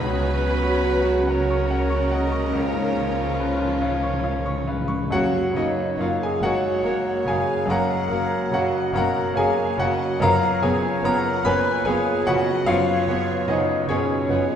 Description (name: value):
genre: classical, romantic movement for piano and orchestra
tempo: 48 BPM (dotted quarters)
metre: 12/8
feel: rubato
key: unclear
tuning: A4 = 440 Hz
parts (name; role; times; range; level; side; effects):
- clear baby grand piano; melody; 0.0-14.6 s; C#2 to C#6; -23 LUFS; left 1 dB; none
- dark studio violin section; melody; 0.0-14.6 s; G#4 to B5; -37 LUFS; left 1 dB; none
- mellow clarinet; second line; 0.0-14.6 s; C#4 to C#5; -31 LUFS; equal; none
- mellow cor anglais; second line; 0.0-14.5 s; B4 to D#5; -33 LUFS; right 4 dB; none
- mellow hollow large flute ensemble; second line; 0.0-14.6 s; A#4 to B5; -32 LUFS; left 2 dB; none
- rich studio violin section; second line; 0.0-14.4 s; C#4 to B4; -37 LUFS; left 2 dB; none
- rich studio viola section; accompaniment; 0.0-14.4 s; E#3 to F#4; -32 LUFS; equal; none
- warm bassoon; accompaniment; 0.0-14.5 s; E#3 to B3; -32 LUFS; right 1 dB; none
- dark French horn section; sustained chords; 0.0-14.6 s; A#3 to F#4; -33 LUFS; left 3 dB; none
- warm trombone section; sustained chords; 0.0-4.8 s; C#3 to F#3; -35 LUFS; equal; none
- dark trumpet section; stabs; 0.0-14.6 s; A#4 to C#5; -30 LUFS; right 4 dB; none
- warm studio cello section; bass; 0.0-14.4 s; F#2 to C#3; -33 LUFS; right 2 dB; none
- warm studio double bass section; bass; 0.0-14.4 s; F#1 to C#2; -30 LUFS; equal; none
- timpani; percussion; 2.6-6.4 s; F#2 to C#3; -30 LUFS; left 1 dB; none
room: wet scoring stage reverb, RT60 1.8 s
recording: heard from further back in the room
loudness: -19 LUFS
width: side -8 dB against mid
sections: 0.0-5.1 A section; 5.1-14.6 B section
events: timpani fill 2.6-5.1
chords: 0.0 F#/C#; 2.6 C#; 5.1 C#7/F#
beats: | 0.04 1.31 2.57 3.83 | 5.12 6.42 7.69 8.94 | 10.21 11.46 12.68 13.90